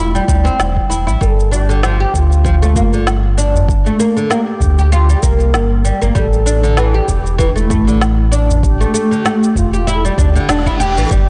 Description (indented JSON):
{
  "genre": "organic downtempo",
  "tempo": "97 BPM",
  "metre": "4/4",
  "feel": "swing 56% on 16ths",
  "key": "unclear",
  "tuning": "A4 = 436 Hz",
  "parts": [
    { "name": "mellow bass bansuri", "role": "melody", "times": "0.0-11.3 s", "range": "D4 to Bb4", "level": "-26 LUFS", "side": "equal", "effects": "vintage 12-bit sampler grit, digital delay" },
    { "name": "oud", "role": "arpeggios", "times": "0.0-11.2 s", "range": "D3 to G4", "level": "-19 LUFS", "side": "equal", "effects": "digital delay" },
    { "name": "round analog bass", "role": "bass", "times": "0.0-11.3 s", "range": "E1 to D2", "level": "-16 LUFS", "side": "equal", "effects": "transformer saturation, sidechain pumping" },
    { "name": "electronic shaker and snare drum", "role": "drums", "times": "0.2-11.2 s", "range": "none", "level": "-24 LUFS", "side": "equal", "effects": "none" },
    { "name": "electronic kick drum", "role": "drums", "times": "0.3-11.2 s", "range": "none", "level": "-20 LUFS", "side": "equal", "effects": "none" },
    { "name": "udu", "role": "percussion", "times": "2.8-10.3 s", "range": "none", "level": "-23 LUFS", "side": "equal", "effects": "none" },
    { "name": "reverse cymbal and impact", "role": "sound effects", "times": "10.3-11.3 s", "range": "none", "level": "-30 LUFS", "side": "equal", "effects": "none" }
  ],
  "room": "light reverb, studio reverb",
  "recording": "blown-out, overdriven recording, overdrive, nothing above 10.3 kHz",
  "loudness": "-13 LUFS",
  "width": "mono",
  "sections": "0.0-11.1 A section",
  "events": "reverse cymbal 10.3-11.1; band accent 10.5-10.8; impact 11.1",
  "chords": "0.0 A7(no3) (rootless); 1.2 Gm7; 6.2 A5"
}